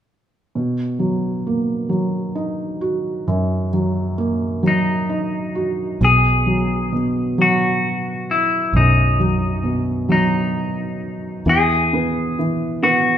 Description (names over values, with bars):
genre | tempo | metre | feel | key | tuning
six-eight pop ballad | 44 BPM (dotted quarters) | 6/8 | straight | B major | A4 = 439 Hz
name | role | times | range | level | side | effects
felt-muted upright piano | accompaniment | 0.6-13.2 s | F#2 to F#4 | -20 LUFS | right 1 dB | none
clean electric guitar | melody | 4.7-13.2 s | D#4 to G#4 | -19 LUFS | left 2 dB | spring reverb
fingered electric bass | bass | 6.0-13.2 s | B1 to E2 | -20 LUFS | equal | none
room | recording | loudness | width
wet large studio reverb, RT60 1.2 s | band playing live in one room | -17 LUFS | side -9 dB against mid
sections
0.5-6.0 A section; 6.0-13.2 B section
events
none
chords
0.5 Bmaj7; 6.0 B; 11.5 E